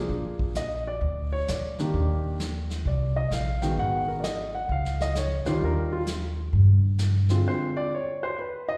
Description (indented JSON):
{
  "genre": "jazz piano trio",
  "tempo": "130 BPM",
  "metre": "4/4",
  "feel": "swing 65% on 8ths",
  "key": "Eb major",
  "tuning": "A4 = 439 Hz",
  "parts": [
    { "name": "warm baby grand piano", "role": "melody", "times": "0.0-8.8 s", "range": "D3 to G5", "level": "-31 LUFS", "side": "equal", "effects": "slapback echo" },
    { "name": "upright bass", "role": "bass", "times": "0.1-7.4 s", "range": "Ab1 to Bb2", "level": "-27 LUFS", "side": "equal", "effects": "none" },
    { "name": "vintage brush drum kit", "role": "drums", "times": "0.1-7.8 s", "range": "brushed snare drum, hi-hat, kick drum, snare drum", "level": "-37 LUFS", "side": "equal", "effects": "none" }
  ],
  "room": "light reverb, small room ambience",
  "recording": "live gig heard through the venue's PA, recital hall reverb",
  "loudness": "-26 LUFS",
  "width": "mono",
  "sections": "0.0-8.8 A section",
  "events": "break 7.5-8.8",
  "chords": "0.1 Bb7; 1.9 Ebmaj7; 2.9 Cm7; 3.8 Abm7; 4.7 Dbadd9; 5.6 Ebmaj9; 7.5 Dm7b5"
}